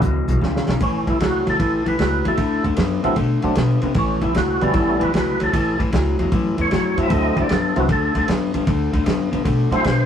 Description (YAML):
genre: electric blues shuffle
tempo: 152 BPM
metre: 4/4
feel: swing 67% on 8ths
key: A mixolydian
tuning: A4 = 440 Hz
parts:
  - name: electric guitar through a small old amp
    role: riff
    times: 0.0-10.1 s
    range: E2 to B3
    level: -22 LUFS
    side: left 2 dB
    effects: none
  - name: upright bass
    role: bass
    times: 0.0-10.1 s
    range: G1 to C3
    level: -22 LUFS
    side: equal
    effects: none
  - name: warm soul drum kit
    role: drums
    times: 0.0-10.0 s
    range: hi-hat, kick drum, ride cymbal, snare drum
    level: -24 LUFS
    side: right 1 dB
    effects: none
  - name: percussive tonewheel organ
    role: accompaniment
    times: 0.8-10.1 s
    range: F#3 to E5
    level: -22 LUFS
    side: right 2 dB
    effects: slow rotary speaker
room: moderate studio reverb, RT60 0.6 s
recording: rough rehearsal-room recording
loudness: -17 LUFS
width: side -8 dB against mid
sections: 0.8-10.1 A section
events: drum fill 0.4-0.8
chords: 0.0 E5; 0.8 A; 2.4 D7; 4.0 A7; 7.1 D7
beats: 0.02 0.42 | 0.81 1.20 1.60 1.99 | 2.39 2.78 3.18 3.57 | 3.96 4.36 4.75 5.14 | 5.54 5.93 6.33 6.72 | 7.11 7.50 7.90 8.29 | 8.68 9.07 9.46 9.86